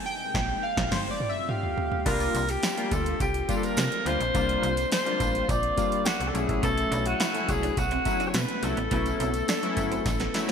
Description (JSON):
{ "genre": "early-eighties boogie funk", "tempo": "105 BPM", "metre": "4/4", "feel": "straight", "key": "unclear", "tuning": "A4 = 440 Hz", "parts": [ { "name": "soft string machine", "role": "sustained chords", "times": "0.0-10.5 s", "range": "C3 to F4", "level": "-37 LUFS", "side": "equal", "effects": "ensemble chorus" }, { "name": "chorused polysynth", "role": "accompaniment", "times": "0.1-10.5 s", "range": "F#3 to G5", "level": "-30 LUFS", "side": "left 2 dB", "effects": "none" }, { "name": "slap-like FM bass", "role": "bass", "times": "0.3-10.3 s", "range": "G1 to C3", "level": "-31 LUFS", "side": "right 1 dB", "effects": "none" }, { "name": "electro analog drum machine", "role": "drums", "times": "0.3-10.5 s", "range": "crash cymbal, hi-hat, kick drum, snare drum, toms", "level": "-30 LUFS", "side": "right 1 dB", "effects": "gated reverb" }, { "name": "raspy alto saxophone", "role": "melody", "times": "1.5-10.5 s", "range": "F#4 to D5", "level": "-28 LUFS", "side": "left 1 dB", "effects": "none" }, { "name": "tambourine", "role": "percussion", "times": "2.1-10.5 s", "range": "none", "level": "-43 LUFS", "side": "right 6 dB", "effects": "none" }, { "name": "clean electric guitar", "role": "riff", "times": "6.6-10.5 s", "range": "B3 to E4", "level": "-37 LUFS", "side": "right 6 dB", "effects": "ensemble chorus" } ], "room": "moderate lush hall reverb, RT60 3.0 s", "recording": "bright 1980s-style digital production", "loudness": "-24 LUFS", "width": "side -7 dB against mid", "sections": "0.0-2.1 A section; 2.1-10.5 B section", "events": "drum fill 0.0-2.1, 10.1-10.5; band accent 0.0-2.1; analog polysynth solo 0.0-2.1", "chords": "0.0 Bb9sus4; 0.9 G9sus4; 2.1 C9sus4; 6.3 B9sus4" }